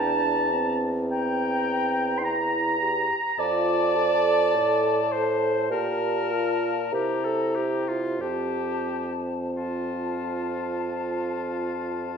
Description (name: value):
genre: classical, slow romantic movement for wind quintet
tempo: 45-53 BPM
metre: 4/4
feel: rubato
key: F major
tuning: A4 = 440 Hz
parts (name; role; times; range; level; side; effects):
- silver concert flute; melody; 0.0-12.2 s; A5 to Bb5; -31 LUFS; left 11 dB; none
- bright oboe; second line; 0.0-12.2 s; F4 to Bb5; -32 LUFS; left 4 dB; none
- dark clarinet; accompaniment; 0.0-12.2 s; F4 to C6; -27 LUFS; right 5 dB; none
- warm French horn; accompaniment; 0.0-12.2 s; C4 to A4; -31 LUFS; left 1 dB; none
- mellow bassoon; bass; 0.0-12.2 s; E2 to C3; -29 LUFS; right 1 dB; none
room: wet recital hall reverb, RT60 1.6 s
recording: none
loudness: -23 LUFS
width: side -6 dB against mid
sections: 0.0-12.2 A section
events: none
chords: 0.0 C7/E; 3.4 F; 5.7 Bb5; 6.9 C7; 8.2 F